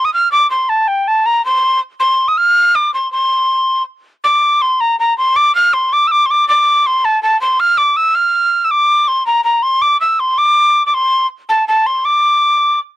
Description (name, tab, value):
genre	celtic folk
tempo	108 BPM (dotted quarters)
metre	6/8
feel	straight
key	C dorian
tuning	A4 = 440 Hz
part	breathy mellow mid whistle	solo	0.0-12.8 s	G5 to F6	-11 LUFS	equal	none
room	little or no reverb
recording	dry, close 1970s-style studio recording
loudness	-11 LUFS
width	side -15 dB against mid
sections	0.0-4.2 A section; 4.2-13.0 B section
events	none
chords	none